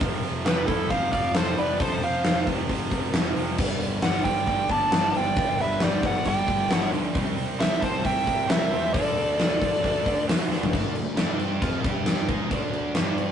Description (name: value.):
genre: hard rock.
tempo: 134 BPM.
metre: 4/4.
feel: straight.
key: unclear.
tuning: A4 = 440 Hz.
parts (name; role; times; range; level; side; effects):
distorted electric guitar; riff; 0.0-13.3 s; F2 to G#4; -39 LUFS; left 2 dB; none.
overdriven semi-hollow guitar; riff; 0.0-13.3 s; F2 to G#4; -37 LUFS; left 5 dB; none.
tight distorted guitar; riff; 0.0-13.3 s; F2 to G#4; -32 LUFS; right 5 dB; distortion.
fuzz picked electric bass; bass; 0.0-13.3 s; F1 to G#2; -32 LUFS; equal; overdrive.
huge arena drum kit; drums; 0.0-13.3 s; crash cymbal, hi-hat, kick drum, snare drum, toms; -25 LUFS; left 1 dB; none.
nasal lead guitar with a parked wah; second line; 0.4-10.2 s; E4 to E5; -34 LUFS; right 2 dB; overdrive.
dark smooth lead guitar; melody; 0.5-10.2 s; A4 to A5; -25 LUFS; right 1 dB; overdrive.
room: moderate studio ambience, RT60 0.5 s.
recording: rough rehearsal-room recording, nothing above 10.8 kHz.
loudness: -22 LUFS.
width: side -8 dB against mid.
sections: 0.0-10.7 A section; 10.7-13.3 B section.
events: drum fill 10.5.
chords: 0.0 F; 3.6 G; 7.1 C; 8.9 D; 10.7 D5; 11.2 G5; 11.6 F5; 11.8 G5; 12.3 D5.